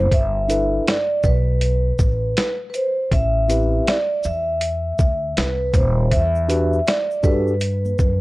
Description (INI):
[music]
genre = hip hop, jazz-hop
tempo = 80 BPM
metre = 4/4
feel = swing 62% on 16ths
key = G major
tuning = A4 = 441 Hz
[part]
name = vibraphone with soft mallets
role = melody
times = 0.0-8.2 s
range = B4 to E5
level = -21 LUFS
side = equal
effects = none
[part]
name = mellow tine electric piano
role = accompaniment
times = 0.0-7.5 s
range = C4 to B4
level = -22 LUFS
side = equal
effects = fast stereo tremolo
[part]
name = upright bass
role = bass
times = 0.0-8.2 s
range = Eb1 to G2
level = -21 LUFS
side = equal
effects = none
[part]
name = boom bap sampler-style drum kit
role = drums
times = 0.1-8.2 s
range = hi-hat, kick drum, shaker, snare drum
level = -20 LUFS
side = equal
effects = none
[part]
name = egg shaker and congas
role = percussion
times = 6.1-8.2 s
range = none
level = -40 LUFS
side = right 2 dB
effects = none
[sound]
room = small room ambience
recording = dry, gritty hardware recording, cassette tape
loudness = -17 LUFS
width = side -20 dB against mid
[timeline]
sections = 0.1-8.2 A section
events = none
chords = 0.1 G69; 3.1 Am7; 6.1 Em9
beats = | 0.12 0.86 1.61 2.37 | 3.12 3.87 4.62 5.37 | 6.12 6.87 7.62